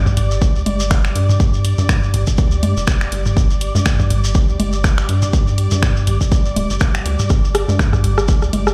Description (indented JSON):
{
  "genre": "minimal techno",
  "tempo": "122 BPM",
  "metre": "4/4",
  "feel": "swing 56% on 16ths",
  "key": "unclear",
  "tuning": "A4 = 439 Hz",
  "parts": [
    { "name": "rubbery square bass", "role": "bass", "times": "0.0-8.7 s", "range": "D1 to G2", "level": "-21 LUFS", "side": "equal", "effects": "sidechain pumping" },
    { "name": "muted studio string section", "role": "texture", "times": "0.0-8.7 s", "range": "G3 to D6", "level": "-29 LUFS", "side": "equal", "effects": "sidechain pumping" },
    { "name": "electronic kick drum", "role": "drums", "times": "0.1-8.4 s", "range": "none", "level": "-18 LUFS", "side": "equal", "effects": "none" },
    { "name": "shekere", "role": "percussion", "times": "0.1-8.7 s", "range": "none", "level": "-31 LUFS", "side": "equal", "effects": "none" },
    { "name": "house drum kit", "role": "drums", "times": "0.2-8.6 s", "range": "finger snaps, hi-hat", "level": "-26 LUFS", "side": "equal", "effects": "none" },
    { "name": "booming analog drum machine", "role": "percussion", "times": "0.2-8.7 s", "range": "congas, rim click, toms", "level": "-23 LUFS", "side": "equal", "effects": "tape echo" }
  ],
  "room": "digital ambience",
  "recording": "played on a big sound system in a bare room, stone room reverb",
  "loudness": "-16 LUFS",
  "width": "mono",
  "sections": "0.0-8.7 A section",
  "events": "none",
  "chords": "0.0 G5",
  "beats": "0.42 0.91 | 1.40 1.89 2.38 2.88 | 3.37 3.86 4.35 4.84 | 5.33 5.83 6.32 6.81 | 7.30 7.79 8.29"
}